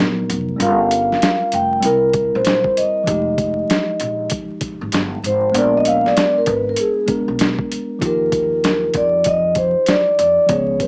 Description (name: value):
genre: hip hop, jazz-hop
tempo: 97 BPM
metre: 4/4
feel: swing 65% on 16ths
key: Eb major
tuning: A4 = 440 Hz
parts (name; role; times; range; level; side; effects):
- tine electric piano; accompaniment; 0.0-10.9 s; F3 to A#4; -26 LUFS; equal; none
- upright bass; bass; 0.0-10.9 s; F1 to F2; -28 LUFS; equal; none
- boom bap sampler-style drum kit; drums; 0.0-10.9 s; hi-hat, kick drum, snare drum; -23 LUFS; equal; vintage 12-bit sampler grit
- vibraphone with soft mallets; melody; 0.6-10.9 s; Ab4 to G5; -18 LUFS; equal; none
room: moderate studio reverb, RT60 0.5 s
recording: vinyl crackle, small speaker sound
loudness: -17 LUFS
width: mono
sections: 0.0-8.0 A section; 8.0-10.9 B section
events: vibraphone solo 0.0-8.0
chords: 0.0 Bmaj7; 0.6 Gm7b5; 1.8 C7; 3.1 Fm9; 5.5 Bb7b9; 8.0 Ebadd9